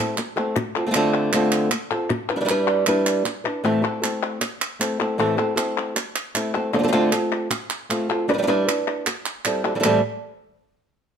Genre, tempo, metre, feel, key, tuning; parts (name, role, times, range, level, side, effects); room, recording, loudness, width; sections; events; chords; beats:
flamenco; 155 BPM; 4/4; straight; A minor; A4 = 438 Hz
flamenco guitar; melody; 0.0-10.0 s; A2 to B4; -20 LUFS; equal
palmas hand claps; percussion; 0.2-9.9 s; -26 LUFS; equal
moderate studio reverb, RT60 0.9 s; -20 LUFS; side -7 dB against mid
0.0-9.8 A section; 9.8-11.2 B section
0.0 Am; 0.6 Dm7; 2.1 G6; 3.6 Am; 6.7 Dm7; 8.3 G6; 9.1 Am7; 9.8 A5
0.18 | 0.56 0.95 1.33 1.72 | 2.10 2.49 2.87 3.26 | 3.64 4.03 4.42 4.80 | 5.19 5.58 5.96 6.35 | 6.74 7.12 7.51 7.90 | 8.29 8.67 9.06 9.45 | 9.84